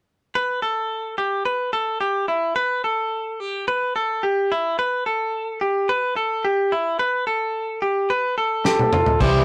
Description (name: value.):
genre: jangly indie pop.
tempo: 108 BPM.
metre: 4/4.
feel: straight.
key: unclear.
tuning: A4 = 443 Hz.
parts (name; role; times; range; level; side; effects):
direct-recorded clean electric guitar; arpeggios; 0.4-9.4 s; E4 to C5; -23 LUFS; equal; none.
dark cor anglais; melody; 8.7-9.4 s; G4 to A4; -21 LUFS; equal; none.
loose indie drum kit; drums; 8.7-9.3 s; crash cymbal, kick drum, snare drum, toms; -23 LUFS; equal; none.
biting overdriven guitar; accompaniment; 9.2-9.4 s; E3 to E4; -24 LUFS; equal; tremolo.
vintage muted picked electric bass; bass; 9.2-9.4 s; C2; -22 LUFS; equal; none.
room: moderate studio reverb, RT60 0.5 s.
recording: rough rehearsal-room recording.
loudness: -22 LUFS.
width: mono.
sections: 0.4-9.2 A section.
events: drum fill 8.7-9.2.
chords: 0.4 Emadd11; 4.8 G.